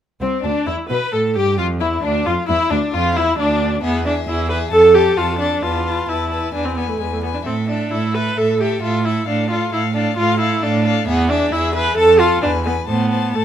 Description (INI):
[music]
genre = quick classical-period movement for string quartet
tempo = 132 BPM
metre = 4/4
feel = straight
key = A minor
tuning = A4 = 440 Hz
[part]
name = rich violin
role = melody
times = 0.2-13.4 s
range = C4 to A5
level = -25 LUFS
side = left 12 dB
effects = none
[part]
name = clear violin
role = second line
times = 0.2-13.4 s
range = C4 to C5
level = -26 LUFS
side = left 5 dB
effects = none
[part]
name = rich viola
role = accompaniment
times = 0.2-13.4 s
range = G#3 to B4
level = -17 LUFS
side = right 1 dB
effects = none
[part]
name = rich cello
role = bass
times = 0.2-13.4 s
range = C2 to B2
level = -21 LUFS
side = right 3 dB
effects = none
[sound]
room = light reverb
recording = none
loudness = -15 LUFS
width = side -10 dB against mid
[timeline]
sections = 0.2-13.4 A section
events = none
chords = 0.2 Am/C; 2.0 Dm; 3.8 E; 4.7 F; 5.6 Esus4; 6.5 E; 7.5 A5; 9.3 Dm/A; 11.1 E; 12.0 F; 12.4 E7; 12.9 Am